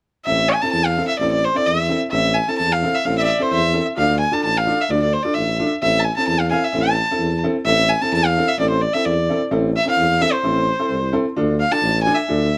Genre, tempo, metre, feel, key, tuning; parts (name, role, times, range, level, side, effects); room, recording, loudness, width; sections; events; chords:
klezmer; 130 BPM; 2/4; straight; A harmonic minor; A4 = 445 Hz
warm violin; melody; 0.3-12.6 s; C5 to A5; -21 LUFS; equal
warm upright piano; accompaniment; 0.3-12.5 s; C4 to A4; -25 LUFS; equal
warm tuba; bass; 0.3-12.6 s; A1 to E2; -25 LUFS; equal
light reverb; -19 LUFS; mono
0.3-7.7 A section; 7.7-12.6 A section
0.3 Am; 4.0 Dm; 5.8 Am; 11.4 Dm